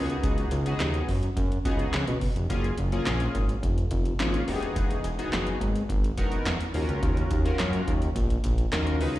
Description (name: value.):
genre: early-eighties boogie funk.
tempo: 106 BPM.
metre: 4/4.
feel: straight.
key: unclear.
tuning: A4 = 440 Hz.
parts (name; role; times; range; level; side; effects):
chorused polysynth; accompaniment; 0.0-9.2 s; A#3 to B4; -31 LUFS; left 2 dB; plate reverb, slapback echo.
fat analog bass; bass; 0.0-9.2 s; E1 to C#3; -27 LUFS; equal; none.
electro analog drum machine; drums; 0.1-9.2 s; handclaps, hi-hat, kick drum, snare drum; -29 LUFS; equal; none.
room: little or no reverb.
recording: live gig heard through the venue's PA, tape saturation, recital hall reverb.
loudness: -24 LUFS.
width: side -15 dB against mid.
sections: 0.0-9.2 A section.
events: none.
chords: 0.0 C#7sus4; 2.5 F#maj9; 4.5 Emaj7; 6.7 D#m7.